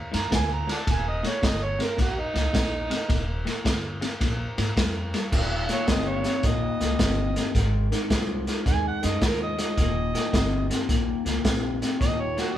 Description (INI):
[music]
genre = electric blues shuffle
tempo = 108 BPM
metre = 4/4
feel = swing 66% on 8ths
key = Eb mixolydian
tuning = A4 = 440 Hz
[part]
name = electric guitar through a small old amp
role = riff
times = 0.0-12.6 s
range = Eb2 to G3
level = -30 LUFS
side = left 4 dB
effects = none
[part]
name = upright bass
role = bass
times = 0.1-12.4 s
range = Eb1 to Ab2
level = -29 LUFS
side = equal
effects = none
[part]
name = crunchy breakbeat drum kit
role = drums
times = 0.1-12.5 s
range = crash cymbal, hi-hat, kick drum, ride cymbal, snare drum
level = -26 LUFS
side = equal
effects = none
[part]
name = overdriven harmonica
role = melody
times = 0.2-12.6 s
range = Eb4 to Bb5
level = -30 LUFS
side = right 3 dB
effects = none
[sound]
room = moderate stone room reverb, RT60 0.9 s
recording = band playing live in one room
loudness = -22 LUFS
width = side -12 dB against mid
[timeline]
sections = 0.0-5.3 A section; 5.3-12.6 B section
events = harmonica solo 5.3-12.6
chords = 0.0 Ab7(no3); 0.9 Eb; 4.2 Bb5; 5.3 Eb7; 7.5 Ab; 9.8 Eb